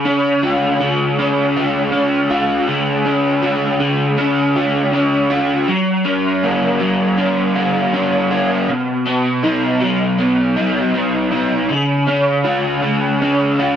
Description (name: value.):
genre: rock.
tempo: 80 BPM.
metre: 4/4.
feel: straight.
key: unclear.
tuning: A4 = 440 Hz.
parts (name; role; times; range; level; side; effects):
crunchy overdriven guitar; solo; 0.0-13.8 s; C3 to F#4; -14 LUFS; equal; ensemble chorus.
room: light reverb.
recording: dense, heavily limited modern master.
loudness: -14 LUFS.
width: side -9 dB against mid.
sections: 0.0-13.8 A section.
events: none.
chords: 0.0 D; 5.7 G; 8.7 C; 11.7 D.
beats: 0.43 1.18 1.93 | 2.68 3.43 4.18 4.93 | 5.68 6.44 7.19 7.94 | 8.69 9.44 10.20 10.95 | 11.70 12.46 13.21.